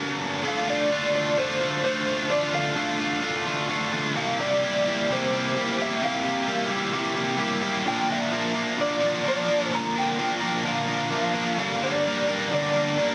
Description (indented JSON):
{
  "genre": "rock",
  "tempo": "129 BPM",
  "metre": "4/4",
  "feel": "straight",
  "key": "D minor",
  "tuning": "A4 = 440 Hz",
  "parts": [
    { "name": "cranked stack guitar", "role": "riff", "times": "0.0-13.1 s", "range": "G2 to Bb4", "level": "-26 LUFS", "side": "equal", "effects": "overdrive, subtle chorus" },
    { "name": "electric guitar through a small old amp", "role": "melody", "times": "0.5-13.1 s", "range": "C5 to Bb5", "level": "-29 LUFS", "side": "equal", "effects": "tremolo, slapback echo" }
  ],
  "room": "light reverb",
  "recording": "dense, heavily limited modern master",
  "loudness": "-25 LUFS",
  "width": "mono",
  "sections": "0.4-13.1 A section",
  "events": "none",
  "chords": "0.4 Dm7; 4.2 C7sus4; 7.9 Bb6; 11.6 Gm"
}